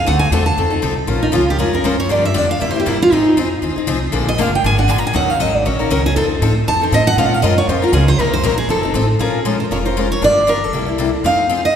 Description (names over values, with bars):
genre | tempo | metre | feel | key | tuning
acoustic string swing (jazz manouche) | 236 BPM | 4/4 | swing 56% on 8ths | Bb minor | A4 = 440 Hz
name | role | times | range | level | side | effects
picked steel-string acoustic guitar | melody | 0.0-11.8 s | Eb4 to Bb5 | -16 LUFS | right 1 dB | none
upright bass | bass | 0.0-11.6 s | F1 to Bb2 | -19 LUFS | right 1 dB | none
picked steel-string acoustic guitar | accompaniment | 0.1-11.6 s | C3 to Bb4 | -19 LUFS | left 4 dB | none
room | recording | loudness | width
wet scoring stage reverb, RT60 2.0 s | recorded in a church or concert hall | -13 LUFS | side -8 dB against mid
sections
0.0-1.1 A section; 1.1-9.2 A section; 9.2-11.8 B section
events
steel-string acoustic guitar solo 0.0-1.1, 1.1-9.2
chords
0.1 D9; 0.6 F7; 1.1 Bbm7; 2.1 Gm7; 2.6 C7; 3.1 Fm7; 4.1 Bb7; 5.1 Ebm7; 6.2 F7; 7.2 Bbm7; 8.2 Cm7b5; 8.7 F7; 9.2 Bbm7; 10.2 Gm7; 10.7 C7; 11.2 Fm7